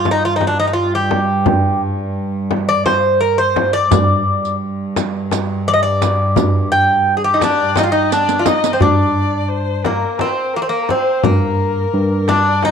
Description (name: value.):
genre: Turkish makam ensemble.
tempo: 172 BPM (eighths).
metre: 7/8.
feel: straight.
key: G minor.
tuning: A4 = 440 Hz.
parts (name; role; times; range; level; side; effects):
Greek bouzouki; melody; 0.0-12.7 s; Bb3 to G5; -16 LUFS; equal; none.
warm chamber cello section; drone; 0.0-8.9 s; G2; -22 LUFS; right 1 dB; none.
darbuka; percussion; 0.1-12.7 s; none; -22 LUFS; right 5 dB; none.
frame drum; percussion; 0.1-12.7 s; none; -20 LUFS; left 8 dB; none.
tine electric piano; bass; 1.5-12.7 s; G2; -20 LUFS; equal; medium stereo tremolo.
riq; percussion; 3.9-8.8 s; none; -24 LUFS; right 13 dB; none.
rich violin; second line; 7.4-12.7 s; Bb4 to Eb5; -23 LUFS; left 12 dB; none.
room: light reverb, small room ambience.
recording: 1960s-style stereo with parts hard left and right.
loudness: -13 LUFS.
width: side -7 dB against mid.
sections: 0.0-8.8 A section; 8.8-12.7 B section.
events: drum fill 8.1-8.8.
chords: none.